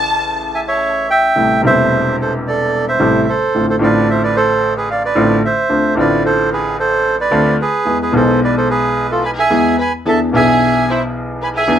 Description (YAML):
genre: tango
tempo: 110 BPM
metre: 4/4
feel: rubato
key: A harmonic minor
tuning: A4 = 440 Hz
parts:
  - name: warm symphonic violin section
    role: second line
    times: 0.0-0.8, 9.1-11.8 s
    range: A3 to A5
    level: -20 LUFS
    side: equal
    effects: none
  - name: clear grand piano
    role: accompaniment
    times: 0.0-11.8 s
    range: E1 to G#4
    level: -16 LUFS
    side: left 1 dB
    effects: none
  - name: bandoneon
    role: melody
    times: 0.5-11.8 s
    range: F4 to B5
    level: -14 LUFS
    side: right 2 dB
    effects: none
room: moderate studio reverb, RT60 0.8 s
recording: band playing live in one room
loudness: -12 LUFS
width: side -9 dB against mid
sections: 0.0-1.4 A section; 1.4-11.8 B section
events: violin section solo 0.0-1.4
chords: 0.0 A; 1.4 Am7; 3.5 F6/A; 7.9 E; 10.0 E7